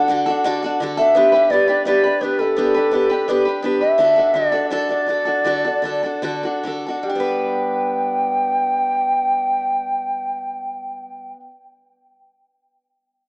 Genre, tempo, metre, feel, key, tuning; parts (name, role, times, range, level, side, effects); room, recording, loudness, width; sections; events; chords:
country; 135-169 BPM; 4/4; straight; G major; A4 = 440 Hz
bansuri; melody; 0.0-11.3 s; A4 to G5; -18 LUFS; equal
picked steel-string acoustic guitar; accompaniment; 0.0-11.5 s; D3 to B4; -21 LUFS; equal
moderate plate reverb, RT60 3.5 s; rough home demo mix, small speaker sound; -16 LUFS; side -37 dB against mid
0.0-1.1 A section; 1.1-7.1 B section; 7.1-10.6 C section
slowing down 4.0-7.1
0.0 D; 1.1 G/B; 4.0 D; 7.1 G